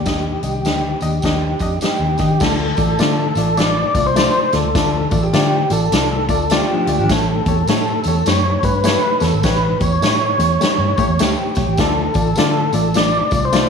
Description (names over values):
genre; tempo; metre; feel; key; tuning
uptempo 1960s-style soul; 102 BPM; 4/4; swing 62% on 8ths; unclear; A4 = 440 Hz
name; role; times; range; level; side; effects
tonewheel organ; melody; 0.0-13.7 s; G4 to D5; -19 LUFS; equal; overdrive, slow rotary speaker
vintage muted fingered electric bass; bass; 0.0-13.6 s; Ab1 to Eb3; -20 LUFS; equal; none
barky reed electric piano; accompaniment; 0.1-13.7 s; A2 to Eb5; -22 LUFS; left 4 dB; overdrive, harmonic tremolo
swinging big-band drum kit; drums; 0.1-13.7 s; crash cymbal, hi-hat, kick drum, snare drum; -20 LUFS; left 1 dB; none
tambourine; percussion; 0.1-13.7 s; none; -32 LUFS; right 5 dB; none
electric guitar through a small old amp; riff; 6.7-7.3 s; F3 to F4; -24 LUFS; left 6 dB; tremolo
room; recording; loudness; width
light reverb, studio ambience; none; -14 LUFS; side -6 dB against mid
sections
0.0-2.4 A section; 2.4-13.7 B section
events
none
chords
0.1 Ebmaj7; 2.4 Dm; 7.1 A7; 11.8 Dm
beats
| 0.07 0.66 1.24 1.83 | 2.42 3.00 3.59 4.17 | 4.76 5.34 5.93 6.51 | 7.10 7.68 8.27 8.85 | 9.44 10.03 10.61 11.20 | 11.78 12.37 12.96 13.54